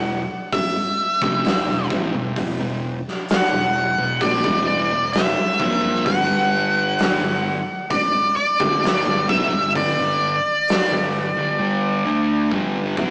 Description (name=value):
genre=stoner and doom metal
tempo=65 BPM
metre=4/4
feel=straight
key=unclear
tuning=A4 = 445 Hz
part: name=octave-fuzz lead guitar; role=melody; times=0.0-12.5 s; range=D5 to F#5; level=-20 LUFS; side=equal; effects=distortion, tape echo
part: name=thick fuzz guitar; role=riff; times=0.0-13.1 s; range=E2 to E4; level=-27 LUFS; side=equal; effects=distortion
part: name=thick fuzz guitar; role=riff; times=0.0-13.1 s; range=E2 to E4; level=-25 LUFS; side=equal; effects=distortion
part: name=overdriven picked electric bass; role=bass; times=0.0-11.6 s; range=E1 to B1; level=-37 LUFS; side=equal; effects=none
part: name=oversized low-tuned drum kit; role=drums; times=0.5-13.1 s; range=hi-hat, kick drum, snare drum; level=-22 LUFS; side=equal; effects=none
room=moderate stone room reverb, RT60 1.1 s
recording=rough rehearsal-room recording, tube saturation, small speaker sound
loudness=-17 LUFS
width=side -37 dB against mid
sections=0.0-13.1 A section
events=drum fill 12.5-13.1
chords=0.0 E5; 6.1 G5